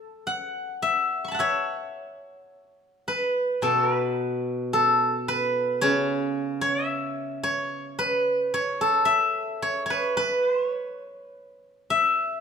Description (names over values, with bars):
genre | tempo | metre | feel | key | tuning
chinese traditional, Chinese solo plucked strings | 52-56 BPM | 4/4 | rubato | A gong mode | A4 = 440 Hz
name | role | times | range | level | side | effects
steel-string zither | solo | 0.0-12.4 s | B2 to C#6 | -23 LUFS | equal | none
room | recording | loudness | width
moderate recital hall reverb, RT60 1.5 s | minimal, uncompressed stereo recording | -22 LUFS | side -7 dB against mid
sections
0.0-12.4 A section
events
none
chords
none